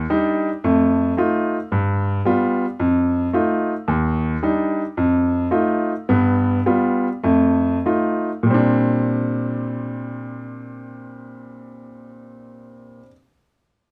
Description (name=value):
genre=jazz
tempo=95-111 BPM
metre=4/4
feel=swing 67% on 8ths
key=Bb major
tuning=A4 = 444 Hz
part: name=bright grand piano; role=solo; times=0.0-13.1 s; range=Eb2 to F4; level=-20 LUFS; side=equal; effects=none
room=light reverb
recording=none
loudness=-20 LUFS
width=mono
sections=0.0-8.5 A section; 8.5-13.5 B section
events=slowing down 3.9-8.5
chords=0.0 Ebmaj7; 0.6 F7; 1.7 G7; 2.8 F7; 3.9 Ebmaj7; 5.0 F7; 6.1 G7; 7.2 F7; 8.5 Bb69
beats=0.10 0.64 1.18 | 1.72 2.26 2.80 3.34 | 3.88 4.42 4.96 5.52 | 6.08 6.65 7.24 7.84 | 8.47 9.10 9.73 10.37 | 11.00 11.63 12.26 12.89